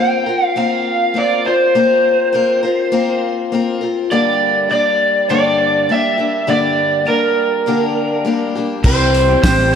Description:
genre	folk rock and heartland rock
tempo	101 BPM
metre	4/4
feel	straight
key	G dorian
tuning	A4 = 440 Hz
part	overdriven slide guitar	melody	0.0-9.8 s	Bb4 to G5	-15 LUFS	right 1 dB	slapback echo
part	picked steel-string acoustic guitar	accompaniment	0.0-9.8 s	G2 to Bb4	-18 LUFS	left 4 dB	slapback echo
part	electric guitar through a small old amp	riff	8.8-9.8 s	C3 to G4	-18 LUFS	right 1 dB	slapback echo
part	fingered electric bass	bass	8.8-9.8 s	A1 to C2	-17 LUFS	equal	none
part	damped 70s drum kit	drums	8.8-9.6 s	crash cymbal, hi-hat, kick drum, snare drum	-16 LUFS	equal	none
part	tambourine	percussion	9.4-9.6 s	none	-31 LUFS	right 3 dB	none
room	wet lush hall reverb, RT60 2.4 s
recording	big arena sound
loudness	-13 LUFS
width	side -7 dB against mid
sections	0.0-9.8 A section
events	none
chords	0.0 Bbsus2; 4.1 Gm; 8.8 C

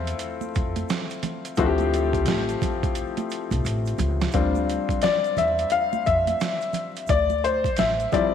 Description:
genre	hip hop, jazz-hop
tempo	87 BPM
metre	4/4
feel	swing 62% on 16ths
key	D minor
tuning	A4 = 441 Hz
part	clear upright piano	accompaniment	0.0-8.3 s	F3 to F5	-23 LUFS	left 5 dB	none
part	upright bass	bass	0.0-8.0 s	A1 to F2	-27 LUFS	equal	none
part	boom bap sampler-style drum kit	drums	0.1-8.3 s	hi-hat, kick drum, snare drum	-28 LUFS	right 3 dB	overdrive
part	egg shaker and congas	percussion	0.1-8.3 s	none	-35 LUFS	right 8 dB	none
room	moderate echo chamber reverb, RT60 2.0 s, small room reverb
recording	1960s-style stereo, vinyl crackle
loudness	-21 LUFS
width	side -8 dB against mid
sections	0.0-4.3 A section; 4.3-8.3 B section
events	drum fill 3.6-4.3; upright piano solo 4.3-8.3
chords	0.0 Dm11

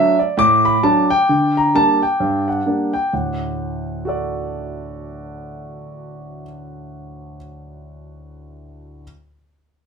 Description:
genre	jazz, stride piano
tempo	130 BPM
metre	4/4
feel	swing 60% on 8ths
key	D major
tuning	A4 = 439 Hz
part	warm concert grand piano	solo	0.0-9.0 s	D2 to D6	-17 LUFS	equal	none
room	wet studio reverb, RT60 0.5 s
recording	band playing live in one room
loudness	-15 LUFS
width	side -5 dB against mid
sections	0.0-3.1 A section; 3.1-6.8 B section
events	none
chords	0.0 D; 1.3 Gm/D; 3.1 D

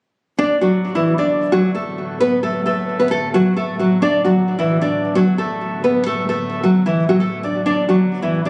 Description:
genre	hip hop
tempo	132 BPM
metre	4/4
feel	half-time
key	B minor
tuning	A4 = 440 Hz
part	nylon-string guitar	melody	0.4-8.5 s	E3 to D5	-18 LUFS	equal	delay
part	ethereal airy pad	sustained chords	0.8-8.5 s	A2 to B3	-30 LUFS	equal	ensemble chorus, built-in reverb
room	light reverb, small room ambience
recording	recorded on a phone in the room, studio reverb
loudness	-18 LUFS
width	mono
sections	0.4-8.5 A section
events	none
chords	0.4 Bm7

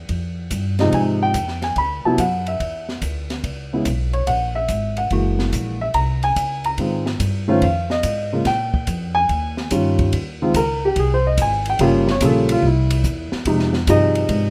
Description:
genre	jazz piano trio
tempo	144 BPM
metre	4/4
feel	swing 67% on 8ths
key	Ab major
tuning	A4 = 435 Hz
part	upright bass	bass	0.0-14.5 s	Gb1 to Bb2	-25 LUFS	equal	none
part	open jazz drum kit	drums	0.1-14.4 s	hi-hat, kick drum, ride cymbal, snare drum	-30 LUFS	equal	none
part	warm baby grand piano	melody	0.8-14.5 s	C3 to B5	-21 LUFS	equal	none
room	studio reverb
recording	rough home demo mix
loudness	-20 LUFS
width	mono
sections	0.0-10.1 A section; 10.1-14.5 B section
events	grand piano solo 10.1-14.5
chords	0.1 Fm7; 1.8 D69; 3.4 Dbm7; 5.1 Gb9; 6.8 Ab6; 7.6 Fm7; 8.5 Bb5; 9.3 Eb9; 10.1 Ab; 11.8 Gm7b5; 12.6 C; 13.5 Fm7

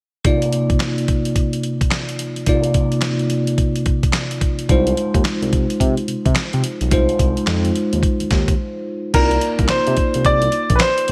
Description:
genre	R&B, new jack swing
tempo	108 BPM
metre	4/4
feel	swing 63% on 16ths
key	C minor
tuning	A4 = 439 Hz
part	bell-like tine electric piano	accompaniment	0.2-11.1 s	C3 to D5	-23 LUFS	equal	phaser
part	dusty soul sampler-style drum kit	drums	0.2-11.1 s	crash cymbal, handclaps, hi-hat, kick drum, snare drum	-22 LUFS	equal	none
part	smooth synth bass	bass	4.7-11.1 s	Bb1 to C3	-23 LUFS	equal	none
part	warm grand piano	melody	9.1-11.1 s	Bb4 to D5	-19 LUFS	equal	none
room	light reverb, digital ambience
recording	none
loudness	-18 LUFS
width	mono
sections	0.2-9.1 A section; 9.1-11.1 B section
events	break 8.6-9.1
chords	0.2 Cm11; 4.7 Ab6; 9.1 Cm11

